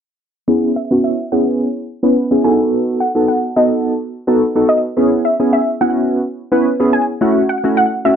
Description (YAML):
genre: pop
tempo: 107 BPM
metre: 4/4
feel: straight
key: C# minor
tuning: A4 = 440 Hz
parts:
  - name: chorused retro synth keys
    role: accompaniment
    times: 0.5-8.2 s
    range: A3 to B4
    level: -14 LUFS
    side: equal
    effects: tremolo, low-pass filter
  - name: wide unison pluck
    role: melody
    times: 0.8-8.2 s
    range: D#5 to G#5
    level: -17 LUFS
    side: equal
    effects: low-pass filter, slapback echo
room: light reverb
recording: dry, close 1970s-style studio recording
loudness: -13 LUFS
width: side -8 dB against mid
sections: 0.5-8.2 A section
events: filter sweep 0.5-8.2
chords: 0.5 C#m7; 2.4 B7; 5.0 C#m7; 7.2 F#m7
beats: | 0.48 1.04 1.60 2.16 | 2.72 3.29 3.85 4.41 | 4.97 5.53 6.09 6.65 | 7.21 7.77